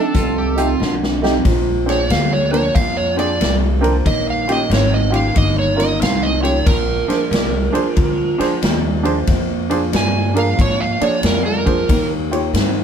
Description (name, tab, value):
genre	electric blues shuffle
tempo	92 BPM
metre	4/4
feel	swing 66% on 8ths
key	Bb mixolydian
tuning	A4 = 440 Hz
part	biting lead guitar	melody	0.0-0.8 s	A4	-25 LUFS	left 1 dB	overdrive
part	overdriven slide guitar	second line	0.0-12.1 s	D4 to Ab5	-21 LUFS	right 3 dB	none
part	warm upright piano	accompaniment	0.0-12.4 s	A3 to D5	-21 LUFS	right 2 dB	none
part	electric guitar through a small old amp	riff	0.0-12.8 s	F2 to C4	-21 LUFS	right 1 dB	phaser
part	upright bass	bass	0.1-12.8 s	G1 to Ab2	-21 LUFS	left 1 dB	none
part	swinging big-band drum kit	drums	0.1-12.7 s	hi-hat, kick drum, ride cymbal, snare drum	-20 LUFS	left 1 dB	none
room	moderate studio reverb, RT60 0.8 s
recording	band playing live in one room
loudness	-14 LUFS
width	side -8 dB against mid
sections	0.0-1.4 A section; 1.4-12.8 B section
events	drum fill 0.8-1.4; electric slide guitar solo 1.4-12.8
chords	0.0 F7; 1.4 Bb; 4.1 Eb7; 6.7 Bb7; 11.9 Eb